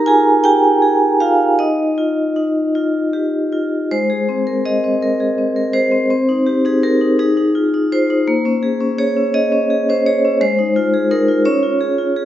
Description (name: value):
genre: classical, contemporary piece for solo vibraphone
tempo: 50-58 BPM (dotted quarters)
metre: 6/8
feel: rubato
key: Ab major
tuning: A4 = 440 Hz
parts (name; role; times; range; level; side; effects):
- vibraphone with medium hard mallets; solo; 0.0-12.2 s; Ab3 to Bb5; -13 LUFS; equal; none
room: wet recital hall reverb, RT60 1.5 s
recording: heard from further back in the room, nothing above 7.7 kHz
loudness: -13 LUFS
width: side -12 dB against mid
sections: 0.0-3.9 A section; 3.9-12.2 B section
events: none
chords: 0.0 Ebadd9; 1.6 Ebsus2; 3.9 Abadd9; 6.1 Cm; 7.2 Ebsus24; 8.3 Bbm9; 10.4 Ab6; 11.5 Db